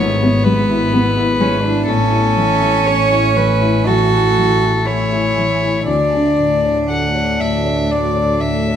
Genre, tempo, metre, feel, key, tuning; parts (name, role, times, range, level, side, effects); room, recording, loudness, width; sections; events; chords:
neoclassical piano and strings; 58-63 BPM; 4/4; rubato; A major; A4 = 440 Hz
rich violin; melody; 0.0-8.8 s; A4 to F#5; -18 LUFS; left 3 dB
clear cello; second line; 0.0-8.8 s; B3 to F#4; -19 LUFS; right 6 dB
felt-muted upright piano; accompaniment; 0.0-8.8 s; D2 to C#5; -19 LUFS; left 3 dB
ethereal airy pad; sustained chords; 0.0-8.8 s; A3 to G#5; -28 LUFS; left 1 dB; ensemble chorus, built-in reverb, phaser
dark double bass; bass; 0.0-8.8 s; G#1 to D2; -20 LUFS; equal
wet stone room reverb, RT60 1.4 s; band playing live in one room; -13 LUFS; side -9 dB against mid
0.0-8.8 A section
0.0 E/G#; 1.9 Amaj7; 5.9 Dmaj7